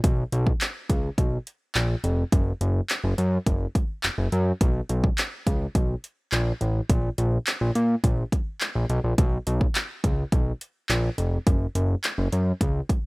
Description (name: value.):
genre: dance-pop.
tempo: 105 BPM.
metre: 4/4.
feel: straight.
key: unclear.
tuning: A4 = 441 Hz.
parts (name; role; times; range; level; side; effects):
fat analog bass; bass; 0.0-12.8 s; F1 to Bb2; -23 LUFS; equal; sidechain pumping.
pop drum kit; drums; 0.0-13.0 s; handclaps, hi-hat, kick drum; -24 LUFS; equal; overdrive.
room: little or no reverb.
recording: rough home demo mix.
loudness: -22 LUFS.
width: side -26 dB against mid.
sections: 0.0-13.1 A section.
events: none.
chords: none.